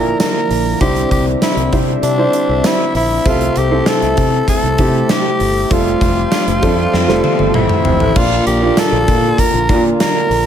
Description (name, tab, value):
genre	1980s-style pop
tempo	98 BPM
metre	4/4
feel	straight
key	unclear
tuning	A4 = 437 Hz
part	raspy tenor saxophone	melody	0.0-10.5 s	D4 to Bb4	-18 LUFS	left 1 dB	none
part	warm concert grand piano	accompaniment	0.0-10.5 s	Bb2 to E5	-17 LUFS	right 1 dB	none
part	lush unison pad	sustained chords	0.0-10.5 s	C3 to E5	-22 LUFS	equal	chorus
part	fingered electric bass	bass	0.0-10.5 s	F1 to C3	-19 LUFS	equal	none
part	gated 80s drum kit	drums	0.2-10.4 s	crash cymbal, hi-hat, kick drum, snare drum, tambourine, toms	-17 LUFS	equal	gated reverb
part	twelve-string electric guitar	second line	6.3-8.1 s	C4 to D4	-28 LUFS	left 3 dB	ping-pong delay
part	mellow synth brass	stabs	6.6-8.1 s	F3 to A4	-24 LUFS	right 1 dB	none
room	light reverb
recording	none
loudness	-11 LUFS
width	side -9 dB against mid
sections	0.0-8.2 A section; 8.2-10.5 A section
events	band accent 5.7-8.2; drum fill 6.9-8.2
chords	0.0 Bb; 0.8 Cadd9; 3.3 Am/C; 5.7 Fadd9; 8.2 Bb